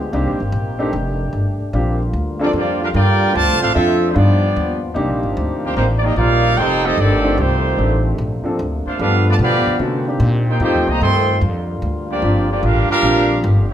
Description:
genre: jazz.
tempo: 149 BPM.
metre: 4/4.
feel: swing 67% on 8ths.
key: Bb major.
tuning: A4 = 440 Hz.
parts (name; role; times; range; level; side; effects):
clear trombone section; sustained chords; 0.0-13.7 s; C3 to D5; -27 LUFS; left 1 dB; none.
upright bass; bass; 0.0-13.7 s; F1 to C3; -18 LUFS; equal; none.
warm grand piano; accompaniment; 0.1-13.7 s; D3 to E5; -22 LUFS; left 1 dB; none.
clear trumpet section; melody; 2.4-13.4 s; A3 to C6; -18 LUFS; equal; none.
mellow trombone section; second line; 2.4-13.7 s; C3 to G4; -22 LUFS; right 3 dB; none.
room: wet large studio reverb, RT60 1.2 s.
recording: band playing live in one room.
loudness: -14 LUFS.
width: side -10 dB against mid.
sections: 0.0-1.7 A section; 1.7-13.7 B section.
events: none.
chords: 0.1 Cm7; 0.9 F13; 1.7 Bb6; 3.3 Dm7; 4.2 G7b13; 5.0 Cm9; 6.6 F13; 8.2 Bbmaj9; 9.0 G7; 9.8 Cm7; 10.6 F9; 11.4 Bb6.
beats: | 0.13 0.53 0.93 1.33 | 1.74 2.14 2.54 2.94 | 3.35 3.75 4.15 4.55 | 4.96 5.36 5.76 6.17 | 6.57 6.97 7.38 7.78 | 8.18 8.59 8.99 9.39 | 9.80 10.20 10.61 11.01 | 11.41 11.82 12.22 12.62 | 13.03 13.43.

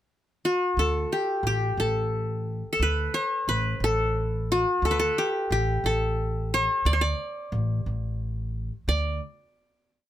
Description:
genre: Arabic maqam ensemble.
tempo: 59 BPM (dotted quarters).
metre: 6/8.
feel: straight.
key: unclear.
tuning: A4 = 440 Hz.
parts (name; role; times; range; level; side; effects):
qanun; melody; 0.5-9.2 s; F#4-50c to D5; -25 LUFS; left 1 dB; none.
upright bass; bass; 0.8-9.2 s; A1 to D2; -27 LUFS; equal; none.
room: little or no reverb.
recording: close, detailed microphones.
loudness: -24 LUFS.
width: side -12 dB against mid.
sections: 0.0-0.8 pickup bar; 0.8-8.9 A section; 8.9-10.1 final note.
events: none.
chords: none.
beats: | 0.77 1.78 | 2.79 3.81 | 4.82 5.83 | 6.84 7.86 | 8.87.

